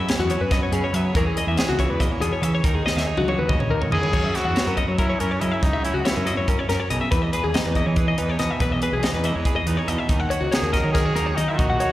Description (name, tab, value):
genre	math rock and midwest emo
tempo	282 BPM (eighths)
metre	7/8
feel	straight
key	unclear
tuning	A4 = 440 Hz
part	twelve-string electric guitar	accompaniment	0.0-11.9 s	E2 to G#4	-28 LUFS	right 5 dB	slapback echo
part	twelve-string electric guitar	arpeggios	0.0-11.9 s	F#4 to F#5	-25 LUFS	left 4 dB	slapback echo, tape echo
part	fuzz fingered electric bass	bass	0.0-11.8 s	A#1 to F#3	-25 LUFS	equal	overdrive
part	crisp fusion drum kit	drums	0.1-11.9 s	crash cymbal, hi-hat, kick drum, snare drum, toms	-24 LUFS	equal	none
part	clear trumpet	melody	3.9-6.7, 10.5-11.9 s	C#4 to A#4	-26 LUFS	equal	slapback echo
room	light reverb, studio ambience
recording	live gig heard through the venue's PA, recital hall reverb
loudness	-19 LUFS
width	side -15 dB against mid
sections	0.0-4.1 A section; 4.1-11.9 B section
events	drum fill 2.9-4.1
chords	0.0 F#7sus4; 1.2 E69; 4.1 F#7; 7.1 Emaj7; 10.1 D#m7